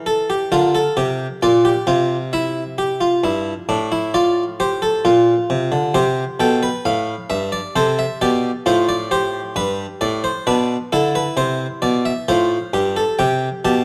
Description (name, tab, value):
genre	classical, baroque-style 3-part fugue for harpsichord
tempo	66 BPM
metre	4/4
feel	straight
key	unclear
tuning	A4 = 439 Hz
part	harpsichord	solo	0.0-13.8 s	G2 to A5	-18 LUFS	equal	none
room	moderate recital hall reverb, RT60 1.7 s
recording	close, detailed microphones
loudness	-19 LUFS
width	mono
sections	0.0-13.2 A section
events	none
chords	0.0 C6 (rootless); 0.5 Bb; 2.3 C; 4.2 F/A; 6.0 C; 7.8 F; 9.6 G; 11.4 C; 13.2 C5